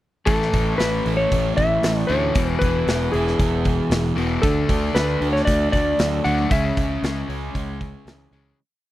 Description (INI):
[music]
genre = classic rock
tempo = 116 BPM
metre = 4/4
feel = straight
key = unclear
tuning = A4 = 440 Hz
[part]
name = clean lap steel guitar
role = melody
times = 0.3-8.0 s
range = G#4 to F#5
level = -23 LUFS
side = left 1 dB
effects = none
[part]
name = crunchy overdriven guitar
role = riff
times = 0.3-8.6 s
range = A2 to E4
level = -28 LUFS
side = right 9 dB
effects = none
[part]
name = overdriven electric guitar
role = riff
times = 0.3-8.6 s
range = E2 to D4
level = -25 LUFS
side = left 5 dB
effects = none
[part]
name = modern bright picked electric bass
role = bass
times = 0.3-8.5 s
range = E1 to D2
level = -24 LUFS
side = equal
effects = none
[part]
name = big rock drum kit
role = drums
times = 0.3-8.4 s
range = hi-hat, kick drum, snare drum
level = -24 LUFS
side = equal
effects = none
[sound]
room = little or no reverb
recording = dry, close 1970s-style studio recording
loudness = -18 LUFS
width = side -14 dB against mid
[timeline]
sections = 0.3-8.6 verse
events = fade-out 6.5-8.6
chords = 0.3 A; 2.4 E; 4.4 D; 6.5 C#m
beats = | 0.26 0.79 1.31 1.83 | 2.35 2.87 3.39 3.91 | 4.43 4.95 5.47 5.99 | 6.50 7.02 7.54 8.06